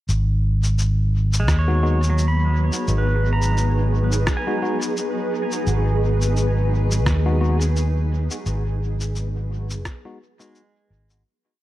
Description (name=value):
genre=ambient dub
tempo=86 BPM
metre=4/4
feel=swing 57% on 16ths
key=G# minor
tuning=A4 = 436 Hz
part: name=granular cloud pad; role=sustained chords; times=1.3-11.3 s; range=F#3 to B4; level=-27 LUFS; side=equal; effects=built-in reverb
part: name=fingered electric bass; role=bass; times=0.1-11.2 s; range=G#1 to D#2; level=-19 LUFS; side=equal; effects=tube saturation
part: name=electronic shaker and rim click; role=drums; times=0.1-11.2 s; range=none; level=-29 LUFS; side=left 1 dB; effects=small room ambience, dub echo
part: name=pedal steel guitar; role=arpeggios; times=1.4-11.2 s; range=F#3 to B5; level=-29 LUFS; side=right 3 dB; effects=low-pass filter, dub echo
part: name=electronic kick drum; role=drums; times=1.5-10.0 s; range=none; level=-24 LUFS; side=equal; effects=small room ambience
part: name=tine electric piano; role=stabs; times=1.7-10.6 s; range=G#3 to F#4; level=-30 LUFS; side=left 4 dB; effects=dub echo
room=light reverb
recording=none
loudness=-18 LUFS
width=side -15 dB against mid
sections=0.1-11.2 groove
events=fade-out 7.5-11.2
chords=0.1 G#m7